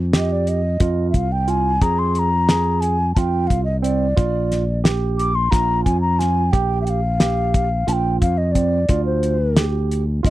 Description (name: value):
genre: progressive instrumental, band music in an uneven meter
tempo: 178 BPM (eighths)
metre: 7/8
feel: straight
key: F dorian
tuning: A4 = 442 Hz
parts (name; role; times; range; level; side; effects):
- modern bright fingered electric bass; bass; 0.0-10.3 s; Bb1 to F2; -20 LUFS; equal; none
- barky tine electric piano; arpeggios; 0.1-10.3 s; C4 to Ab4; -26 LUFS; right 10 dB; none
- cloth-damped thuddy drum kit; drums; 0.1-10.3 s; hi-hat, kick drum, snare drum; -18 LUFS; equal; none
- mellow hollow wooden flute; melody; 0.2-10.3 s; C5 to D6; -22 LUFS; left 1 dB; none
room: little or no reverb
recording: dry, close 1970s-style studio recording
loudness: -16 LUFS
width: side -15 dB against mid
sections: 0.0-10.3 A section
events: flute solo 0.0-10.3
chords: 0.0 Fm; 4.2 Bb; 8.9 Dm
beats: 0.14 0.47 0.81 1.15 1.49 | 1.82 2.16 2.50 2.83 3.17 3.50 3.84 | 4.18 4.51 4.85 5.19 5.53 5.86 6.20 | 6.54 6.87 7.21 7.54 7.88 8.22 8.56 | 8.89 9.23 9.57 9.90 10.24